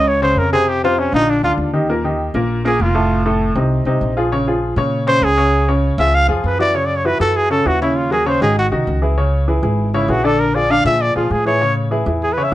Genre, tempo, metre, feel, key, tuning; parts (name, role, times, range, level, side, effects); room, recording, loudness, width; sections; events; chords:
Afro-Cuban jazz; 198 BPM; 4/4; straight; Bb minor; A4 = 440 Hz
warm trumpet; melody; 0.0-12.5 s; Db4 to E#5; -16 LUFS; equal
clear upright piano; accompaniment; 0.0-12.5 s; A2 to D5; -18 LUFS; left 1 dB
upright bass; bass; 0.0-12.5 s; F1 to Bb2; -19 LUFS; equal
moderate studio reverb, RT60 0.5 s; -14 LUFS; side -14 dB against mid
0.0-6.7 A section; 6.7-12.5 A section
trumpet solo 0.0-12.5
0.0 Gb (rootless); 0.7 F5; 1.3 Bb; 1.9 Ebadd9; 3.1 F7; 4.3 Bbm7; 5.5 Db; 6.7 F#5; 8.0 D#m7; 8.6 G#7; 9.2 C#m; 10.4 A#7; 11.6 Amaj7